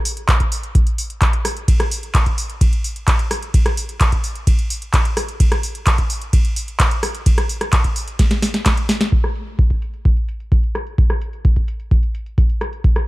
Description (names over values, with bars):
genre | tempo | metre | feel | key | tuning
house | 129 BPM | 4/4 | straight | none | none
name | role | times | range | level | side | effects
booming analog drum machine | drums | 0.1-13.1 s | handclaps, hi-hat, ride cymbal, rim click, snare drum | -21 LUFS | equal | overdrive, low-pass filter on hats, low-pass filter on snare, low-pass filter on cymbals, low-pass filter on room
electronic kick drum | drums | 0.3-12.9 s | none | -16 LUFS | equal | overdrive
room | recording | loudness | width
little or no reverb | none | -16 LUFS | side -19 dB against mid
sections
0.0-9.1 A section; 9.1-13.1 B section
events
drop 0.0-9.1; drum fill 8.2-9.1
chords
none